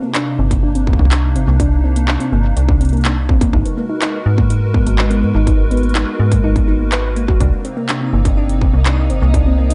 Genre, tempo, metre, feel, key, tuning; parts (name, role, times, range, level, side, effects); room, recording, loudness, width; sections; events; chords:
IDM; 124 BPM; 4/4; straight; A4 = 440 Hz
hollow soft pad; sustained chords; 0.0-9.7 s; C3 to Cb5; -25 LUFS; equal; ensemble chorus
harp-like synth pluck; arpeggios; 0.0-9.7 s; Bb3 to Cb5; -23 LUFS; equal; chorus, cassette tape, digital delay
booming analog drum machine; drums; 0.1-9.7 s; handclaps, hi-hat; -25 LUFS; equal
metallic FM bass; bass; 0.4-9.7 s; Gb1 to Ab2; -17 LUFS; equal
electronic kick drum; drums; 0.5-9.4 s; -19 LUFS; equal; distortion
twinkling granular texture; texture; 8.1-9.7 s; Eb5; -34 LUFS; equal; built-in reverb
light reverb; dark, warm production, nothing above 10.8 kHz; -15 LUFS; mono
0.0-9.7 A section
0.0 Cm9; 3.5 Abm9; 7.4 Cm9